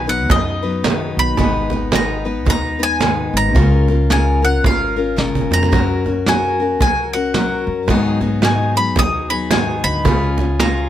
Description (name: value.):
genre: acoustic folk duo or small band.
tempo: 111 BPM.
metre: 4/4.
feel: swing 60% on 8ths.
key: unclear.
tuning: A4 = 440 Hz.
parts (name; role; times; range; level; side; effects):
bowl-back mandolin; melody; 0.0-10.9 s; D#5 to D#6; -20 LUFS; equal; none.
picked steel-string acoustic guitar; accompaniment; 0.0-10.9 s; G#2 to B4; -20 LUFS; left 5 dB; none.
upright bass; bass; 0.0-10.9 s; G#1 to G#2; -20 LUFS; equal; none.
cajon; percussion; 0.1-10.7 s; none; -21 LUFS; right 4 dB; none.
vintage brush drum kit; drums; 0.3-10.7 s; kick drum, snare drum; -19 LUFS; equal; none.
room: little or no reverb.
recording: close, detailed microphones.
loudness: -14 LUFS.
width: side -11 dB against mid.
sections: 0.0-10.9 A section.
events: drum fill 5.2-5.7.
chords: 0.0 B; 1.4 G#m; 3.6 C#6; 5.7 F#; 7.9 G#m7; 10.1 C#.